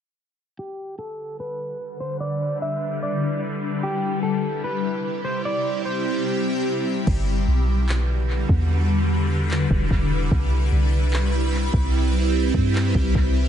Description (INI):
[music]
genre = hip hop, atmospheric cloud-rap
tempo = 148 BPM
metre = 4/4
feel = half-time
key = C lydian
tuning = A4 = 438 Hz
[part]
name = electric guitar at the edge of break-up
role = melody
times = 0.6-7.0 s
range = G4 to E5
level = -28 LUFS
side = right 1 dB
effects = low-pass filter, tape echo
[part]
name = shimmering ambient pad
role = sustained chords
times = 1.6-13.5 s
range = C3 to F#5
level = -24 LUFS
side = left 1 dB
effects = chorus, built-in reverb, phaser, sidechain pumping, low-pass filter
[part]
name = soft 808-style bass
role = bass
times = 7.1-13.5 s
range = E1 to G2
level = -20 LUFS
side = equal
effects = none
[part]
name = smooth R&B drum kit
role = drums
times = 7.1-13.2 s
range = crash cymbal, handclaps, kick drum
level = -24 LUFS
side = equal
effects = vintage 12-bit sampler grit, tape echo
[sound]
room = light reverb, digital ambience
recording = echo-heavy mix, nothing above 10.6 kHz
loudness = -20 LUFS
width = side -9 dB against mid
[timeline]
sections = 0.6-7.1 A section; 7.1-13.5 B section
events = filter sweep 0.6-7.1; hi-hats muted 7.1-13.5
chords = 0.6 Gmaj7; 2.2 Em7; 3.8 C; 7.1 Gmaj7; 8.7 Em7; 10.3 Cmaj7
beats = | 0.58 0.99 1.40 1.80 | 2.21 2.61 3.02 3.42 | 3.83 4.23 4.64 5.04 | 5.45 5.86 6.26 6.67 | 7.07 7.48 7.88 8.29 | 8.69 9.10 9.50 9.91 | 10.31 10.72 11.13 11.53 | 11.94 12.34 12.75 13.15